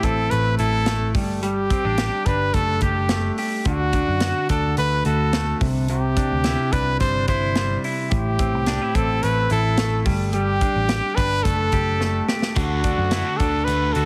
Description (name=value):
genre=jangly indie pop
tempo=108 BPM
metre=4/4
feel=straight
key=D mixolydian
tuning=A4 = 440 Hz
part: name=bright trumpet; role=melody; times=0.0-14.1 s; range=F#4 to C5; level=-26 LUFS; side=equal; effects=none
part: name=clean electric guitar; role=arpeggios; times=0.0-14.1 s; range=A2 to G4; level=-27 LUFS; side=equal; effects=none
part: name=vintage muted picked electric bass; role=bass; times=0.0-14.1 s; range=F#1 to F#2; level=-26 LUFS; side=equal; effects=none
part: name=modern studio drum kit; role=drums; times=0.0-14.1 s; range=hi-hat, kick drum, snare drum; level=-27 LUFS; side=equal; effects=none
part: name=crunchy overdriven guitar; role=accompaniment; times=12.6-14.1 s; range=D3 to F#4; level=-31 LUFS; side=equal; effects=none
room=light reverb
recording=heavily compressed radio sound, multiband compression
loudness=-21 LUFS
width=mono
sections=0.0-14.1 A section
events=drum fill 12.0-12.6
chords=0.0 Am; 1.2 Gsus2; 3.7 D; 5.6 Cadd9; 8.1 Am; 10.1 Gsus2; 12.6 D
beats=0.31 0.87 | 1.43 1.99 2.54 3.10 | 3.66 4.22 4.77 5.33 | 5.89 6.45 7.00 7.56 | 8.12 8.67 9.23 9.79 | 10.34 10.90 11.45 12.01 | 12.57 13.12 13.68